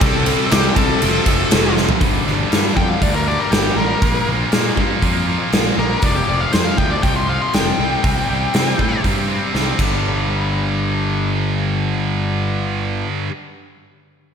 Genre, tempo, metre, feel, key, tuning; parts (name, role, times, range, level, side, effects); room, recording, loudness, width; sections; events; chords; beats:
hard rock; 120 BPM; 4/4; straight; A4 = 441 Hz
high-gain lead guitar; melody; 0.0-9.0 s; G4 to C6; -22 LUFS; left 3 dB; distortion, slapback echo
distorted electric guitar; riff; 0.0-13.3 s; F2 to C4; -24 LUFS; left 10 dB; overdrive, slapback echo
distorted electric guitar; riff; 0.0-2.0 s; F2 to C4; -26 LUFS; left 2 dB
scooped high-gain guitar; riff; 0.0-13.3 s; F2 to C4; -23 LUFS; right 9 dB; distortion, slapback echo
fuzz fingered electric bass; bass; 0.0-13.0 s; F1 to C3; -22 LUFS; right 1 dB; overdrive
big rock drum kit; drums; 0.0-9.9 s; crash cymbal, hi-hat, kick drum, ride cymbal, snare drum, toms; -18 LUFS; equal
moderate lush hall reverb, RT60 1.9 s, small room ambience; big arena sound; -15 LUFS; side -7 dB against mid
0.0-2.0 A section; 2.0-10.0 B section; 10.0-14.1 C section
drum fill 1.8, 9.5-10.0; lead electric guitar solo 2.0-10.0
0.0 C5; 1.0 F; 2.0 G5; 4.0 Bb5; 6.0 F5; 7.8 C5; 9.8 G5
| 0.01 0.51 1.01 1.51 | 2.01 2.51 3.01 3.51 | 4.02 4.52 5.02 5.52 | 6.02 6.53 7.03 7.53 | 8.03 8.53 9.04 9.54 | 10.04 10.54 11.05 11.55 | 12.05 12.56 13.06